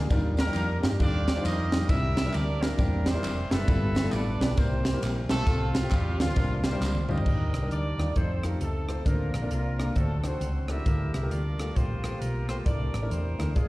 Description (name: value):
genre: uptempo gospel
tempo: 134 BPM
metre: 4/4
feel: swing 62% on 8ths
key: unclear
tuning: A4 = 441 Hz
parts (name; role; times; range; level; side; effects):
- warm horn section; melody; 0.0-13.7 s; F3 to E5; -33 LUFS; right 1 dB; slapback echo
- warm grand piano; accompaniment; 0.0-13.7 s; G2 to D5; -33 LUFS; left 1 dB; slapback echo
- hollow-body short-scale fingered electric bass; bass; 0.0-13.7 s; F1 to G2; -28 LUFS; equal; none
- crisp fusion drum kit; drums; 0.1-13.7 s; crash cymbal, hi-hat, kick drum, ride cymbal, rim click, snare drum, toms; -28 LUFS; equal; none
- tambourine and handclaps; percussion; 0.1-7.2 s; none; -45 LUFS; right 2 dB; slapback echo
- mellow French horn section; sustained chords; 7.3-13.7 s; Eb3 to F4; -43 LUFS; right 1 dB; none
room: light reverb, small room reverb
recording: live gig heard through the venue's PA, recital hall reverb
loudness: -24 LUFS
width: side -19 dB against mid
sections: 0.0-7.3 A section; 7.3-13.7 B section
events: drum fill 6.8-7.3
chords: 0.1 Ebmaj9; 1.9 C9; 3.7 G13; 4.6 C7; 5.5 F/C; 6.4 C9sus4; 7.3 Ebmaj7; 8.2 F7; 9.1 Bbmaj9; 10.0 D7; 10.9 Gm9; 12.7 C13